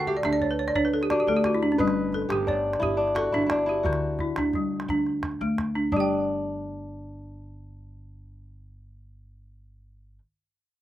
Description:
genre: west african traditional, West African string and xylophone music.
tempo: 116 BPM (dotted quarters).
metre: 12/8.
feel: straight.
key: G lydian.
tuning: A4 = 440 Hz.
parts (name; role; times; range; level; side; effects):
kora; melody; 0.0-10.2 s; D4 to B4; -28 LUFS; left 1 dB; slapback echo.
balafon; arpeggios; 0.0-10.3 s; D3 to G5; -25 LUFS; equal; slapback echo.
upright bass; bass; 0.0-10.2 s; G1 to D2; -37 LUFS; equal; none.
calabash; percussion; 0.1-6.1 s; none; -35 LUFS; right 1 dB; none.
room: little or no reverb.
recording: recorded outdoors, with no room sound.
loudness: -23 LUFS.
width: side -13 dB against mid.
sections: 0.0-5.9 A section; 5.9-10.1 B section.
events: balafon fill 0.0-1.8.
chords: 0.0 D5; 1.8 G; 3.9 D; 5.9 G5.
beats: 0.24 0.76 1.27 | 1.79 2.31 2.82 3.34 | 3.85 4.37 4.89 5.41 | 5.92 6.44 6.96 7.47 | 7.99 8.51 9.02 9.54.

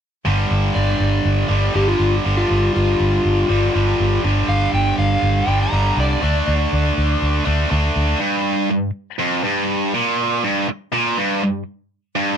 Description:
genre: rock.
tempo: 121 BPM.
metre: 4/4.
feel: straight.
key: unclear.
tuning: A4 = 443 Hz.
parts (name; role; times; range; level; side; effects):
tight distorted guitar; riff; 0.3-12.4 s; F2 to D4; -19 LUFS; right 1 dB; distortion.
vintage muted fingered electric bass; bass; 0.3-8.1 s; G1 to D2; -19 LUFS; equal; none.
overdriven slide guitar; melody; 0.8-7.4 s; F4 to Bb5; -21 LUFS; left 1 dB; slapback echo.
room: light reverb.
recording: dry, close 1970s-style studio recording.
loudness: -16 LUFS.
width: side -8 dB against mid.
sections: 0.3-8.2 A section; 8.2-12.4 B section.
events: none.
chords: 0.3 G5; 6.2 D5; 8.2 Fsus4 (rootless).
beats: | 0.27 0.76 1.26 1.75 | 2.25 2.75 3.24 3.74 | 4.24 4.73 5.23 5.72 | 6.22 6.71 7.21 7.71 | 8.20 8.69 9.19 9.68 | 10.18 10.67 11.17 11.66 | 12.15.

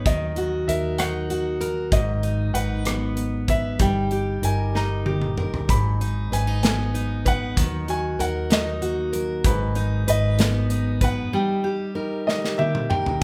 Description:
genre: six-eight pop ballad.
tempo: 64 BPM (dotted quarters).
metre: 6/8.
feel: straight.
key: G# minor.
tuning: A4 = 440 Hz.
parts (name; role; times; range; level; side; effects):
clear concert grand piano; melody; 0.0-13.2 s; B4 to B5; -30 LUFS; equal; none.
picked steel-string acoustic guitar; accompaniment; 0.0-13.2 s; G#2 to B4; -28 LUFS; equal; none.
fingerpicked plugged-in steel-string acoustic guitar; arpeggios; 0.0-13.2 s; F#3 to D#4; -37 LUFS; equal; none.
vintage muted fingered electric bass; bass; 0.0-11.3 s; G1 to D#2; -29 LUFS; equal; none.
modern studio drum kit; drums; 0.1-13.2 s; hi-hat, kick drum, rim click, snare drum, toms; -26 LUFS; equal; none.
room: moderate large studio reverb, RT60 0.9 s.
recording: band playing live in one room.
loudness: -23 LUFS.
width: mono.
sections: 0.0-13.2 A section.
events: drum fill 4.7-5.7, 12.3-13.2; break 11.3-13.2.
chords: 0.1 D#m; 1.9 G#m7; 3.8 D#/G; 5.7 G#m7; 7.6 D#m; 9.4 G#m7; 11.3 D#/G.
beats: | 0.06 0.99 | 1.92 2.86 | 3.80 4.75 | 5.69 6.63 | 7.58 8.51 | 9.45 10.39 | 11.33 12.27 | 13.22.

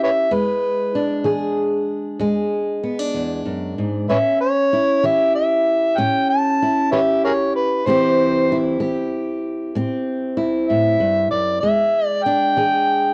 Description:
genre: acoustic country blues, solo or duo.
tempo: 64 BPM (dotted quarters).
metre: 12/8.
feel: straight.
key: unclear.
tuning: A4 = 440 Hz.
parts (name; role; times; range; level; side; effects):
overdriven harmonica; melody; 0.0-13.1 s; G#4 to A5; -20 LUFS; equal; cassette tape.
fingerpicked steel-string acoustic guitar; accompaniment; 0.0-13.1 s; E2 to G#4; -23 LUFS; equal; cassette tape.
room: light reverb.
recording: home recording on cassette.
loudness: -19 LUFS.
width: mono.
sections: 0.0-13.1 A section.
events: none.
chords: 0.3 E7; 4.1 A7; 7.9 Am7; 11.6 E7.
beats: | 0.32 1.27 2.21 3.15 | 4.09 5.04 5.98 6.92 | 7.86 8.80 9.75 10.69 | 11.63 12.57.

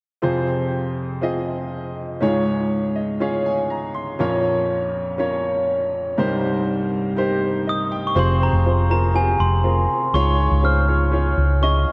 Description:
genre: pop.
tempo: 121 BPM.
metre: 4/4.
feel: straight.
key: F minor.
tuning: A4 = 440 Hz.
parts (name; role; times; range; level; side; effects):
clear baby grand piano; accompaniment; 0.2-11.9 s; Bb1 to C6; -23 LUFS; equal; subtle chorus.
glockenspiel with soft plastic mallets; melody; 7.7-11.9 s; Ab5 to F6; -24 LUFS; equal; none.
hollow-body short-scale fingered electric bass; bass; 8.2-11.8 s; F1 to Db2; -21 LUFS; equal; none.
room: wet lush hall reverb, RT60 2.8 s.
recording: dreamy mix soaked in reverb.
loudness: -21 LUFS.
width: mono.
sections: 0.2-8.2 A section; 8.2-11.9 B section.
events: grand piano fill 2.7-4.2, 7.4-8.2.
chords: 0.2 Fm; 2.2 Db; 4.2 Bbm; 6.2 Cm7; 8.2 Fm; 10.1 Db.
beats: | 0.22 0.72 1.21 1.71 | 2.21 2.70 3.20 3.69 | 4.19 4.69 5.18 5.68 | 6.17 6.67 7.17 7.66 | 8.16 8.65 9.15 9.65 | 10.14 10.64 11.13 11.63.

